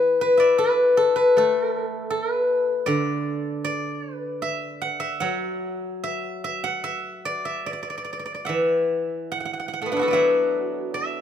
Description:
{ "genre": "chinese traditional, Chinese solo plucked strings", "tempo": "70-82 BPM", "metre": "4/4", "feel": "rubato", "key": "E shang mode", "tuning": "A4 = 440 Hz", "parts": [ { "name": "steel-string zither", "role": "solo", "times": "0.0-11.2 s", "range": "D3 to F#5", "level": "-21 LUFS", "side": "left 1 dB", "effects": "none" } ], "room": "moderate recital hall reverb, RT60 1.7 s", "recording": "minimal, uncompressed stereo recording", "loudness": "-21 LUFS", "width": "side -9 dB against mid", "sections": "0.0-11.2 A section", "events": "none", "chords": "none", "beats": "0.60 1.36 2.12 | 2.87 3.66 4.45 5.24 | 6.05 6.86 7.67 8.52 | 9.36 10.17 10.96" }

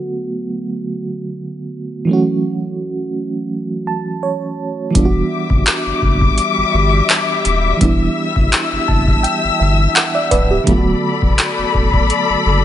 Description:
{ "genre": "contemporary R&B", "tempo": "84 BPM", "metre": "4/4", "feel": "swing 54% on 16ths", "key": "E minor", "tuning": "A4 = 439 Hz", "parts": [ { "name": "FM electric piano with tremolo", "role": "accompaniment", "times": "0.0-12.6 s", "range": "D3 to A5", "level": "-19 LUFS", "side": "right 3 dB", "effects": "none" }, { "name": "warm studio string section", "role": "sustained chords", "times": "4.9-12.6 s", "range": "G3 to E6", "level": "-18 LUFS", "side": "left 6 dB", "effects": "sidechain pumping" }, { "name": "saturated sub bass", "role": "bass", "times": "5.0-12.6 s", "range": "C#1 to G1", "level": "-17 LUFS", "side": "equal", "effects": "none" }, { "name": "booming analog drum machine", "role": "drums", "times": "5.0-12.3 s", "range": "handclaps, hi-hat, kick drum", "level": "-15 LUFS", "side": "equal", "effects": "none" } ], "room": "light reverb", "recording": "nothing above 10.7 kHz", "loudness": "-14 LUFS", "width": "side -11 dB against mid", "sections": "0.0-5.0 A section; 5.0-12.6 B section", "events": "FM electric piano fill 3.5-5.0, 8.5-10.7", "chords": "0.0 Bm7/D; 2.1 F#m7; 5.0 Em9; 10.7 Bm7/D", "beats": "0.67 1.38 | 2.10 2.81 3.53 4.24 | 4.95 5.67 6.38 7.10 | 7.81 8.53 9.24 9.95 | 10.67 11.38 12.10" }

